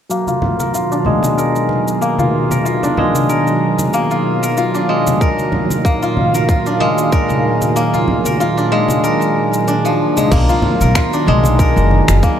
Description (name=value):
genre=organic downtempo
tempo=94 BPM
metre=4/4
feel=swing 55% on 16ths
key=unclear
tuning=A4 = 440 Hz
part: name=warm analog pad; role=sustained chords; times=0.6-12.4 s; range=Bb2 to F5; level=-19 LUFS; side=right 2 dB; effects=chorus, sidechain pumping, shimmer reverb
part: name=steel-string zither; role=arpeggios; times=0.1-12.4 s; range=F3 to Bb4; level=-16 LUFS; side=left 1 dB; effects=low-pass filter, digital delay, shimmer reverb
part: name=deep house drum kit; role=drums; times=0.1-12.4 s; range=crash cymbal, finger snaps, shaker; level=-25 LUFS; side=equal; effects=overdrive, small room ambience
part: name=quartz singing bowl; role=texture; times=0.1-12.4 s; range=F#3 to Bb5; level=-28 LUFS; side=right 1 dB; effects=none
part: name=congas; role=percussion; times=0.3-12.1 s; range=none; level=-22 LUFS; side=left 1 dB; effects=none
part: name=electronic kick drum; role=drums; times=5.2-12.4 s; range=none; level=-16 LUFS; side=equal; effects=small room ambience
part: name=upright bass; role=bass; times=10.3-12.2 s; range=F#1 to B1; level=-14 LUFS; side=equal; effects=sidechain pumping
room=moderate lush hall reverb, RT60 2.5 s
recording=none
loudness=-12 LUFS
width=side -9 dB against mid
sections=0.1-10.3 A section; 10.3-12.4 B section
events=filter sweep on guzheng 0.1-10.3; kick drops out 7.8-10.3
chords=0.1 B; 5.2 Ebmadd9; 10.3 B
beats=| 0.10 0.74 1.38 2.02 | 2.66 3.29 3.93 4.57 | 5.21 5.85 6.49 7.12 | 7.76 8.40 9.04 9.68 | 10.32 10.96 11.59 12.23